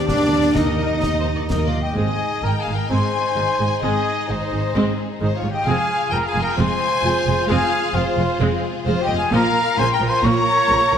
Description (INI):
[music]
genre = cinematic, heroic adventure film score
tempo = 130 BPM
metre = 4/4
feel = straight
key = Ab major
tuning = A4 = 439 Hz
[part]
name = warm symphonic violin section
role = melody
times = 0.0-11.0 s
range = Bb4 to Bb5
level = -26 LUFS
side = left 6 dB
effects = none
[part]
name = mellow concert flute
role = second line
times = 0.0-11.0 s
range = D5 to Db6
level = -24 LUFS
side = left 2 dB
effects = none
[part]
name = warm symphonic viola section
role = accompaniment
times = 0.0-11.0 s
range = Db3 to Eb5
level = -26 LUFS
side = equal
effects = none
[part]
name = mellow French horn section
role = sustained chords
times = 0.0-1.7 s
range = Bb3 to G4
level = -28 LUFS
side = left 3 dB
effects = none
[part]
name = mellow trumpet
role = stabs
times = 0.0-11.0 s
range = D4 to Db5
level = -25 LUFS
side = right 2 dB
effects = none
[part]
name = warm studio cello section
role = bass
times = 0.0-11.0 s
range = F2 to Eb4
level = -25 LUFS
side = right 2 dB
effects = none
[part]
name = warm symphonic double bass section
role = bass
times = 0.0-11.0 s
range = F1 to Eb2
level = -25 LUFS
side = right 3 dB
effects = none
[part]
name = mellow cor anglais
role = second line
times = 0.1-1.7 s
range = D4 to Eb4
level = -33 LUFS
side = equal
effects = none
[part]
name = warm symphonic violin section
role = second line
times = 0.1-11.0 s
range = Eb4 to Eb5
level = -30 LUFS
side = left 5 dB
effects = none
[part]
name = concert snare drum and concert bass drum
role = drums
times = 0.1-1.7 s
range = none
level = -26 LUFS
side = left 1 dB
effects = none
[sound]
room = moderate scoring stage reverb, RT60 1.8 s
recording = none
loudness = -17 LUFS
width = side -8 dB against mid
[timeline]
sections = 0.0-2.0 A section; 2.0-11.0 B section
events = none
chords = 0.0 Cm/Eb (rootless); 2.0 Ab; 5.7 Fm; 9.3 Bbm